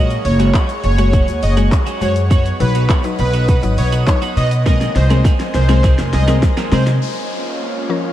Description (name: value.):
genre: dance-pop.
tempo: 102 BPM.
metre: 4/4.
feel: straight.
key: Bb minor.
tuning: A4 = 439 Hz.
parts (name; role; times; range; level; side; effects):
soft supersaw; melody; 0.0-6.8 s; B4 to Eb5; -22 LUFS; equal; sidechain pumping, ping-pong delay.
mallet-like synth pluck; accompaniment; 0.0-8.1 s; F3 to Db5; -23 LUFS; left 5 dB; chorus, sidechain pumping.
airy breathy pad; sustained chords; 0.0-8.1 s; Bb3 to D#6; -25 LUFS; equal; chorus, sidechain pumping.
twelve-string electric guitar; riff; 0.0-6.9 s; Eb3 to Ab4; -28 LUFS; right 7 dB; wide subtle chorus.
upright bass; bass; 0.0-7.0 s; F1 to C3; -15 LUFS; equal; sidechain pumping.
pop drum kit; drums; 0.1-7.0 s; handclaps, hi-hat, kick drum, shaker, snare drum; -17 LUFS; equal; vintage 12-bit sampler grit.
tube shaker; percussion; 0.1-7.0 s; none; -44 LUFS; left 9 dB; none.
downlifter; sound effects; 7.0-8.1 s; none; -28 LUFS; left 2 dB; none.
room: light reverb.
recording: cassette tape.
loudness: -13 LUFS.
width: side -13 dB against mid.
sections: 0.0-7.0 A section; 7.0-8.1 B section.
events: drum fill 4.7-7.0.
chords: 0.0 Gbsus2; 2.3 B; 4.7 Abadd9/C; 7.0 Bbm.